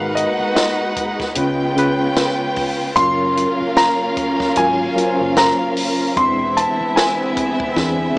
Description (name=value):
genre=lush 1970s-style soul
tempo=75 BPM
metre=4/4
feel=swing 58% on 16ths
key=unclear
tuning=A4 = 440 Hz
part: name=warm concert grand piano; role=melody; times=0.0-8.1 s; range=D#5 to C6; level=-19 LUFS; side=equal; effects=none
part: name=warm studio violin section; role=second line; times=0.0-8.2 s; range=B3 to G5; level=-22 LUFS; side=right 1 dB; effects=none
part: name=reed electric piano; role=accompaniment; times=0.0-8.2 s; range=C#3 to C5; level=-21 LUFS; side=equal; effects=fast tremolo
part: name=warm symphonic string section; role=sustained chords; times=0.0-8.2 s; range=A#2 to F#4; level=-27 LUFS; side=equal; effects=none
part: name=vintage muted fingered electric bass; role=bass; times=0.0-8.1 s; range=E1 to E2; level=-31 LUFS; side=equal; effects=none
part: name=compact cocktail drum kit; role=drums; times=0.2-8.0 s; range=hi-hat, kick drum, snare drum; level=-21 LUFS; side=equal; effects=none
room=light reverb, small room ambience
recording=small speaker sound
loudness=-15 LUFS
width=side -25 dB against mid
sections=0.0-8.2 A section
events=drum fill 7.8-8.2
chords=0.0 G#m9; 1.4 C#7; 3.0 F#maj7; 6.2 E7b13